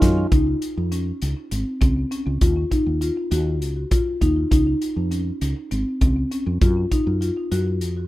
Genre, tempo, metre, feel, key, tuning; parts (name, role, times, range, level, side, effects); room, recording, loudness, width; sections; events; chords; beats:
progressive instrumental, band music in an uneven meter; 200 BPM (eighths); 7/8; straight; Db major; A4 = 440 Hz
marimba with medium mallets; arpeggios; 0.0-7.8 s; C4 to Gb4; -23 LUFS; left 1 dB; tape echo, plate reverb
woody fretless electric bass; bass; 0.0-8.0 s; Ab1 to Gb2; -22 LUFS; equal
loose indie drum kit; drums; 0.0-8.0 s; hi-hat, kick drum, snare drum; -21 LUFS; equal
moderate small room reverb, RT60 0.5 s; rough home demo mix; -19 LUFS; side -16 dB against mid
0.3-8.1 A section
0.3 Dbmaj7; 2.4 Ebm; 4.5 Dbmaj7; 6.6 Ebmadd9 (rootless)
0.01 | 0.31 0.61 0.91 1.21 1.51 1.81 2.11 | 2.41 2.71 3.01 3.31 3.61 3.91 4.21 | 4.51 4.81 5.11 5.41 5.71 6.01 6.31 | 6.61 6.91 7.21 7.51 7.81